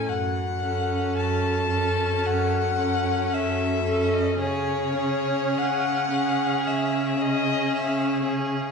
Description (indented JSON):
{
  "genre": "classical, slow romantic movement for string quartet",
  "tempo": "56 BPM",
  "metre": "4/4",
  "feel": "rubato",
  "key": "C# minor",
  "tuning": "A4 = 439 Hz",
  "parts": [
    { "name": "rich violin", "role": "melody", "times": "0.0-8.3 s", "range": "C#5 to A5", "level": "-27 LUFS", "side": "left 6 dB", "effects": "none" },
    { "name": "rich violin", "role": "second line", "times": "0.0-8.7 s", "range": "G#4 to A4", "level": "-29 LUFS", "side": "left 1 dB", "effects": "none" },
    { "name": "rich viola", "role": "accompaniment", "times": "0.0-8.7 s", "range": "C#4", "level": "-29 LUFS", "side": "right 2 dB", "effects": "none" },
    { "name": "warm cello", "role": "bass", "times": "0.1-8.6 s", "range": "F#2 to C#3", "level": "-28 LUFS", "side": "right 3 dB", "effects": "none" }
  ],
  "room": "wet recital hall reverb, RT60 1.6 s",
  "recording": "heard from further back in the room, nothing above 10.8 kHz",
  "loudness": "-22 LUFS",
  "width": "side -5 dB against mid",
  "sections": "0.0-8.7 A section",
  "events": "none",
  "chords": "0.1 F#m; 4.4 C#5"
}